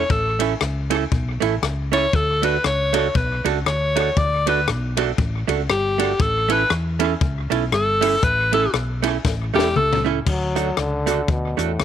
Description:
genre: ska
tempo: 118 BPM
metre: 4/4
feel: swing 59% on 8ths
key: D major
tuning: A4 = 440 Hz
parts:
  - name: edgy alto saxophone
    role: melody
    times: 0.0-10.0 s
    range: G4 to D5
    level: -20 LUFS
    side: left 2 dB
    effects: none
  - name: archtop guitar, miked and amplified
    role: accompaniment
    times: 0.0-11.7 s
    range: A3 to A4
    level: -24 LUFS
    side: right 12 dB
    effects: none
  - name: hollow-body short-scale fingered electric bass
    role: bass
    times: 0.0-11.8 s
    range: E1 to E2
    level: -24 LUFS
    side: left 1 dB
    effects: none
  - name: compact cocktail drum kit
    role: drums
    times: 0.1-11.8 s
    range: crash cymbal, hi-hat, kick drum, ride cymbal, rim click, snare drum, toms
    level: -25 LUFS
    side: left 4 dB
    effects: tape echo
  - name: breathy trombone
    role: melody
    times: 10.3-11.8 s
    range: A2 to F#3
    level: -24 LUFS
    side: left 2 dB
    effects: none
room: light reverb, small room ambience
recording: 1960s-style stereo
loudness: -18 LUFS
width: side -10 dB against mid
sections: 0.0-10.3 A section; 10.3-11.8 B section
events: alto saxophone solo 0.0-10.3; drum fill 9.2-10.3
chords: 0.0 A; 2.1 D; 6.2 A; 10.3 D

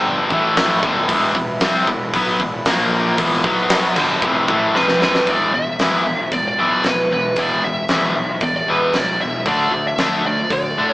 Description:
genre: hard rock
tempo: 115 BPM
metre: 4/4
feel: straight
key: E phrygian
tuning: A4 = 440 Hz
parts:
  - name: phased analog pad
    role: sustained chords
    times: 0.0-5.3 s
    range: G3 to E5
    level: -26 LUFS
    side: equal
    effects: phaser, chorus
  - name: distorted electric guitar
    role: riff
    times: 0.0-10.9 s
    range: E2 to D4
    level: -19 LUFS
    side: left 2 dB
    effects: overdrive
  - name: sludgy distorted guitar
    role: riff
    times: 0.0-10.9 s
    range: E2 to D4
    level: -25 LUFS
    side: right 2 dB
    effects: overdrive
  - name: fuzz fingered electric bass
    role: bass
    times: 0.0-10.9 s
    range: E1 to A2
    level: -26 LUFS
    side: equal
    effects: overdrive
  - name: huge arena drum kit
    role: drums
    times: 0.3-10.6 s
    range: crash cymbal, hi-hat, kick drum, snare drum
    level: -21 LUFS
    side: equal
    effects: none
  - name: lead guitar through a small cranked amp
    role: melody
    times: 4.8-10.9 s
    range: B4 to E5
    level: -20 LUFS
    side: equal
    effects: overdrive
room: moderate studio reverb, RT60 0.5 s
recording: band playing live in one room, small speaker sound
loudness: -15 LUFS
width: side -18 dB against mid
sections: 0.0-5.3 A section; 5.3-10.9 B section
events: drum fill 4.8-5.3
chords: 0.3 A5; 0.8 Em; 2.7 A#5; 3.2 E5; 3.4 B5; 4.0 Em; 5.3 E5; 9.5 D5

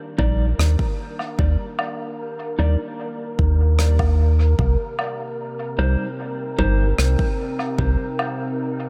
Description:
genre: ambient dub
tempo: 75 BPM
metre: 4/4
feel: straight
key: C minor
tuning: A4 = 441 Hz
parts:
  - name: warbly tape-like pad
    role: sustained chords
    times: 0.0-8.9 s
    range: C3 to G4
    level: -34 LUFS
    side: equal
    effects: chorus, built-in reverb
  - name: wind-like tuned noise texture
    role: texture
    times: 0.0-8.9 s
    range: Bb4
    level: -33 LUFS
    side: equal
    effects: built-in reverb
  - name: mellow electric guitar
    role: stabs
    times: 0.2-6.8 s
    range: G3 to D5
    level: -31 LUFS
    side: equal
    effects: dub echo
  - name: round analog bass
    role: bass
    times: 0.2-8.0 s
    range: G1 to Eb2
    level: -19 LUFS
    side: equal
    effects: none
  - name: electronic kick drum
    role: drums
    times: 0.2-8.0 s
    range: none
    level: -26 LUFS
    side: equal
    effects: none
  - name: rim click and woodblock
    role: drums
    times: 0.6-8.4 s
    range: none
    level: -31 LUFS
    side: equal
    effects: dub echo
room: small room ambience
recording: none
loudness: -21 LUFS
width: mono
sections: 0.0-8.9 A section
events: fade-in on ambient pad 0.0-8.9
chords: 0.0 Ebmaj7; 4.6 Cm

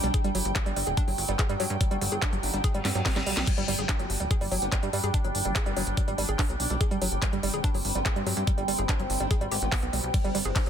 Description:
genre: psychedelic trance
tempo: 144 BPM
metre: 4/4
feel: straight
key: G major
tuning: A4 = 438 Hz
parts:
  - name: formant-sweep wobble bass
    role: second line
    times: 0.0-9.7 s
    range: B3 to D4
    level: -42 LUFS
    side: left 2 dB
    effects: none
  - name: overtone-sweeping drone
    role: sustained chords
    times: 0.0-10.7 s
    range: F#3 to D4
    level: -34 LUFS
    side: equal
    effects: chorus, built-in reverb, phaser, sidechain pumping
  - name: woody wave-folded pluck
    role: riff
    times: 0.0-10.7 s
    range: F#3 to Ab4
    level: -33 LUFS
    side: moving between left 2 dB and right 4 dB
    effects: chorus, auto-pan, cassette tape, sidechain pumping, digital delay
  - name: plucky analog bass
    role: bass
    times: 0.0-10.7 s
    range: D1 to G2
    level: -31 LUFS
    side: equal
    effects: none
  - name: drum and bass drum kit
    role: drums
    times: 0.0-10.7 s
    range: crash cymbal, handclaps, hi-hat, ride cymbal, snare drum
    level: -32 LUFS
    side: equal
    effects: none
  - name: ethereal airy pad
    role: texture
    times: 0.0-10.7 s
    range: G5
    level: -37 LUFS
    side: right 2 dB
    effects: ensemble chorus, built-in reverb, sidechain pumping
  - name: electronic kick drum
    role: drums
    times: 0.1-10.6 s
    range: none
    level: -26 LUFS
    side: equal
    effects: none
  - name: reverse cymbal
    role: sound effects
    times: 2.8-3.5 s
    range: none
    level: -38 LUFS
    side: left 3 dB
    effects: none
room: light reverb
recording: dense, heavily limited modern master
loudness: -24 LUFS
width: side -8 dB against mid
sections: 0.0-10.7 A section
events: reverse cymbal 2.8-3.5; drum fill 2.8-3.5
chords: 0.0 G5

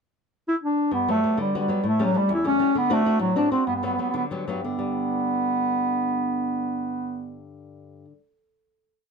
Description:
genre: italian folk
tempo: 117-134 BPM (dotted quarters)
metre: 6/8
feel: straight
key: G major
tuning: A4 = 440 Hz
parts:
  - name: warm bass clarinet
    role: melody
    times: 0.5-7.4 s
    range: F#3 to E4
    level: -22 LUFS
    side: right 1 dB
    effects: none
  - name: flamenco guitar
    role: accompaniment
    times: 0.9-8.2 s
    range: E2 to F#4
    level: -30 LUFS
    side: left 4 dB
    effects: none
room: light reverb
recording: close, detailed microphones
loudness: -22 LUFS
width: side -5 dB against mid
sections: 0.0-0.9 pickup bar; 0.9-4.6 A section; 4.6-6.7 final chord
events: slowing down 2.7-4.6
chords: 0.0 N.C.; 0.9 Gmaj7; 1.8 A7; 2.7 D7; 3.7 Gmaj7; 4.6 G

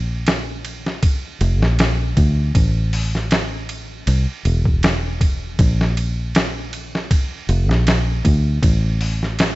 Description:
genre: trip hop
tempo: 79 BPM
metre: 4/4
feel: swing 54% on 16ths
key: A phrygian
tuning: A4 = 440 Hz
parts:
  - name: fingered electric bass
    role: bass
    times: 0.0-9.6 s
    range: E1 to D2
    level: -19 LUFS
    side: equal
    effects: tube saturation
  - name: boom bap sampler-style drum kit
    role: drums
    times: 0.3-9.6 s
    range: hi-hat, kick drum, ride cymbal, snare drum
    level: -19 LUFS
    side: equal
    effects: studio reverb
room: digital ambience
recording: vinyl crackle, nothing above 7.8 kHz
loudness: -16 LUFS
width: side -19 dB against mid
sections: 0.0-9.6 A section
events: none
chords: none

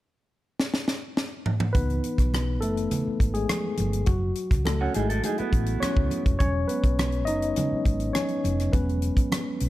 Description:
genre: lush 1970s-style soul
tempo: 103 BPM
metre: 4/4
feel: straight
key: unclear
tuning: A4 = 440 Hz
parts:
  - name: tight funk drum kit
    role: drums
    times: 0.6-9.7 s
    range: hi-hat, kick drum, rim click, snare drum, toms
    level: -26 LUFS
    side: equal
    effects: none
  - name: tine electric piano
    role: accompaniment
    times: 1.7-9.7 s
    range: E3 to D#5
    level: -27 LUFS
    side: left 2 dB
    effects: medium stereo tremolo
  - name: hollow-body short-scale fingered electric bass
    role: bass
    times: 1.8-9.7 s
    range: E1 to C#2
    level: -27 LUFS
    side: equal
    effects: none
  - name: congas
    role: percussion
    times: 1.8-9.5 s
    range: none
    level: -34 LUFS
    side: right 3 dB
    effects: none
  - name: electric guitar through a small old amp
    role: riff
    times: 4.8-6.2 s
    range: B3 to A4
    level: -30 LUFS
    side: right 5 dB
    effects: none
room: light reverb, small room ambience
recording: none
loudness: -23 LUFS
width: side -16 dB against mid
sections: 0.0-1.8 A section; 1.8-9.7 B section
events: drum fill 0.6-1.8; tine electric piano solo 1.8-9.7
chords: 0.0 N.C.; 1.8 C#m7 (rootless); 4.1 F#m9; 6.4 E69

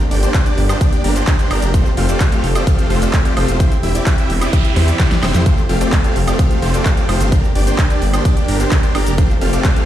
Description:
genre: EDM, festival progressive house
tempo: 129 BPM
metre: 4/4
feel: straight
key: F major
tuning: A4 = 440 Hz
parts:
  - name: lush unison pad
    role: sustained chords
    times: 0.0-9.9 s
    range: F3 to A4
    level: -24 LUFS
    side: equal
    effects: chorus, sidechain pumping
  - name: big supersaw lead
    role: riff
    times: 0.0-9.9 s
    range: A3 to F5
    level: -20 LUFS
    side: equal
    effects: sidechain pumping, digital delay
  - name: big-room dance drum kit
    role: drums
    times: 0.0-9.9 s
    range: handclaps, hi-hat, shaker, snare drum, woodblock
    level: -23 LUFS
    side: equal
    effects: overdrive, small room ambience
  - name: detuned saw bass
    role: bass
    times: 0.1-9.6 s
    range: E1 to F2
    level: -17 LUFS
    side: equal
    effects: sidechain pumping
  - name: electronic kick drum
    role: drums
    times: 0.3-9.7 s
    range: none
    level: -14 LUFS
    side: equal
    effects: overdrive, small room ambience
  - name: noise sweep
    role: sound effects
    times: 4.2-5.5 s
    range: none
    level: -28 LUFS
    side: right 6 dB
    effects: none
room: light reverb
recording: played on a big sound system in a bare room, stone room reverb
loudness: -12 LUFS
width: side -12 dB against mid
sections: 0.0-9.9 A section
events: noise sweep 4.2-5.5; drum fill 4.8-5.5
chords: 0.0 Gm; 1.7 Fadd9; 3.6 C/E; 5.5 Fadd9; 7.3 Gm; 9.2 Fadd9

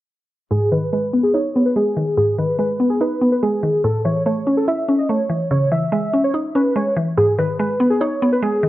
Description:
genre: hip hop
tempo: 144 BPM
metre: 4/4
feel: half-time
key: G# phrygian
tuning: A4 = 440 Hz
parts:
  - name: warbly lo-fi synth keys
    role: melody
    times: 0.5-8.7 s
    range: G#4 to E5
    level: -20 LUFS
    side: equal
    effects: chorus, low-pass filter, cassette tape, plate reverb, tape echo
  - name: mallet-like synth pluck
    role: accompaniment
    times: 0.5-8.7 s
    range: G#2 to E4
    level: -18 LUFS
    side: equal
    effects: chorus, low-pass filter, cassette tape
room: wet small room reverb, RT60 0.6 s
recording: home recording on cassette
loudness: -16 LUFS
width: side -15 dB against mid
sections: 0.5-8.7 A section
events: filter sweep 0.5-8.7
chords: 0.5 G#m; 3.8 A; 5.5 C#madd9; 7.2 G#m

